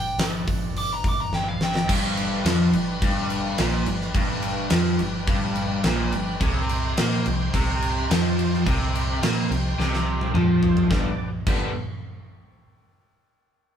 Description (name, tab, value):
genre	blues rock power trio and southern rock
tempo	106 BPM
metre	4/4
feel	straight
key	G mixolydian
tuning	A4 = 440 Hz
part	smooth overdriven lead guitar	melody	0.0-1.9 s	F5 to D6	-27 LUFS	equal	none
part	overdriven tonewheel organ	sustained chords	0.0-11.3 s	G3 to D5	-36 LUFS	right 2 dB	slow rotary speaker
part	vintage muted fingered electric bass	bass	0.0-11.7 s	G1 to Bb2	-28 LUFS	equal	none
part	huge arena drum kit	drums	0.2-11.6 s	crash cymbal, hi-hat, kick drum, snare drum, toms	-24 LUFS	equal	none
part	overdriven electric guitar	riff	1.9-11.7 s	G2 to D4	-24 LUFS	equal	none
room	moderate studio reverb, RT60 0.6 s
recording	band playing live in one room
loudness	-20 LUFS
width	side -8 dB against mid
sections	0.0-1.9 A section; 1.9-10.9 B section; 10.9-13.2 C section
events	lead electric guitar solo 0.0-1.9; drum fill 1.3-1.9, 9.8-10.9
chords	0.0 G; 6.4 C5; 10.9 G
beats	0.20 0.76 1.33 | 1.89 2.46 3.02 3.59 | 4.16 4.72 5.29 5.85 | 6.41 6.98 7.54 8.10 | 8.67 9.23 9.79 10.35 | 10.91 11.47